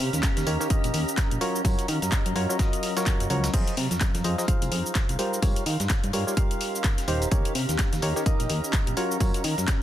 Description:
piano house; 127 BPM; 4/4; swing 59% on 16ths; A4 = 440 Hz
solid FM bass; bass; 0.0-9.7 s; Eb1 to Eb3; -28 LUFS; equal; sidechain pumping
granular cloud pad; texture; 0.0-9.8 s; Gb3 to C6; -32 LUFS; equal; built-in reverb, sidechain pumping
breakbeat sampler-style drum kit; drums; 0.1-9.8 s; hi-hat, snare drum, tambourine; -38 LUFS; right 2 dB; sidechain pumping on perc, high-pass filter on perc, high-pass filter on snare, sidechain pumping on hats, high-pass filter on hats
house drum kit; drums; 0.1-9.8 s; crash cymbal, handclaps, hi-hat, shaker; -31 LUFS; left 2 dB
electronic kick drum; drums; 0.2-9.8 s; -25 LUFS; equal
percussive organ stab; riff; 0.5-9.4 s; Eb3 to F5; -30 LUFS; equal; chorus, cassette tape, sidechain pumping, dub echo
digital ambience; dense, heavily limited modern master; -23 LUFS; side -12 dB against mid
0.0-9.8 A section
0.0 Eb7; 1.4 Gbmaj7; 3.5 Fm7; 5.2 Gm7b5; 7.1 Eb7; 9.0 Gbmaj7

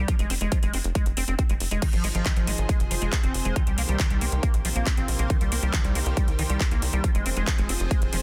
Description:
uplifting trance; 138 BPM; 4/4; straight; F minor; A4 = 440 Hz
liquid acid bass; arpeggios; 0.0-8.2 s; Eb3 to C4; -34 LUFS; equal; analog chorus, sidechain pumping, dub echo
tight sequencer bass; bass; 0.0-8.2 s; F1 to C2; -29 LUFS; equal; sidechain pumping
big-room dance drum kit; drums; 0.1-8.2 s; crash cymbal, handclaps, hi-hat; -33 LUFS; equal
electronic kick drum; drums; 0.1-8.0 s; -26 LUFS; equal
lush unison pad; sustained chords; 1.8-8.2 s; C3 to C5; -36 LUFS; equal; chorus, sidechain pumping
little or no reverb; dense, heavily limited modern master; -25 LUFS; mono
0.0-8.2 A section
0.1 Fm; 1.8 Ab6; 2.7 Fm; 3.6 Cm7; 4.4 Bbsus2; 5.3 Cm7; 7.0 Fm

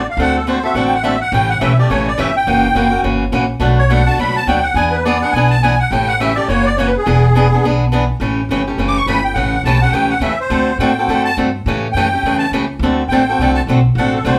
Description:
acoustic string swing (jazz manouche); 209 BPM; 4/4; swing 59% on 8ths; A mixolydian; A4 = 440 Hz
musette accordion; second line; 0.0-14.4 s; G#4 to D6; -19 LUFS; equal
upright bass; bass; 0.0-14.4 s; E1 to A2; -20 LUFS; equal
picked swing-style acoustic guitar; accompaniment; 0.2-14.4 s; B2 to A4; -19 LUFS; equal
wet studio reverb, RT60 0.5 s; heard from further back in the room; -15 LUFS; mono
0.0-8.2 A section; 8.2-14.4 A section
accordion solo 0.0-14.4
0.0 D7; 1.3 A7; 2.5 F#7b9; 3.6 Bm7; 4.8 E7; 5.9 A7; 6.5 F#7; 7.1 E7; 8.2 A7; 10.5 D7; 11.7 A7; 12.8 D7

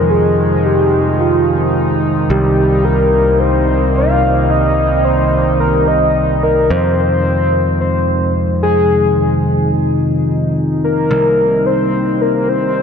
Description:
synthwave; 109 BPM; 4/4; straight; F minor; A4 = 440 Hz
soft octave-layered synth lead; melody; 0.0-12.8 s; F4 to F5; -15 LUFS; left 1 dB; chorus, diffuse ambient delay
chorused pulse-width pad; sustained chords; 0.0-12.8 s; C3 to Eb4; -16 LUFS; equal
modern bright picked electric bass; bass; 0.0-12.8 s; C2 to F2; -18 LUFS; equal
wet cathedral reverb, RT60 6.0 s; dreamy mix soaked in reverb, high-pass filter; -11 LUFS; side -6 dB against mid
0.0-6.7 A section; 6.7-12.8 B section
filter sweep on analog synth pad 6.7-12.8
0.0 Fm7; 2.3 Cm7; 6.7 Fm7; 11.1 Cm7

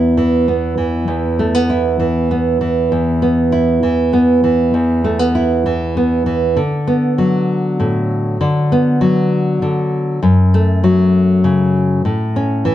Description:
folk; 99 BPM; 3/4; straight; A4 = 440 Hz
nylon-string guitar; solo; 0.0-12.7 s; E2 to E4; -12 LUFS; equal
moderate large studio reverb, RT60 1.1 s; dark, warm production; -13 LUFS; side -12 dB against mid
0.0-6.6 A section; 6.6-12.7 B section
0.0 E5; 6.6 D6; 8.4 Bm/D; 10.2 F#m; 12.0 A

